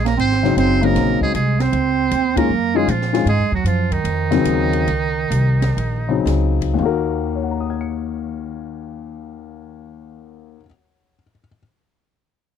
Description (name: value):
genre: modal jazz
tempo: 109-156 BPM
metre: 4/4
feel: swing 66% on 8ths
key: Eb minor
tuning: A4 = 439 Hz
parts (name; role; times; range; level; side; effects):
- trumpet with metal mute; melody; 0.0-6.3 s; Eb4 to C5; -24 LUFS; right 2 dB; none
- clear bass clarinet; second line; 0.0-6.3 s; Eb3 to C4; -21 LUFS; right 12 dB; none
- upright bass; bass; 0.0-10.6 s; Gb1 to Bb2; -21 LUFS; equal; none
- open jazz drum kit; drums; 0.1-6.7 s; hi-hat, kick drum, ride cymbal, snare drum; -30 LUFS; right 1 dB; none
- warm grand piano; accompaniment; 0.4-11.6 s; Eb2 to Db7; -20 LUFS; left 10 dB; none
room: little or no reverb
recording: dry, close 1970s-style studio recording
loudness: -16 LUFS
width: side -8 dB against mid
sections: 0.0-6.8 A section; 6.8-11.2 B section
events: band accent 2.3; slowing down 3.3-6.8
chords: 0.2 Ab9sus4; 6.8 Ebm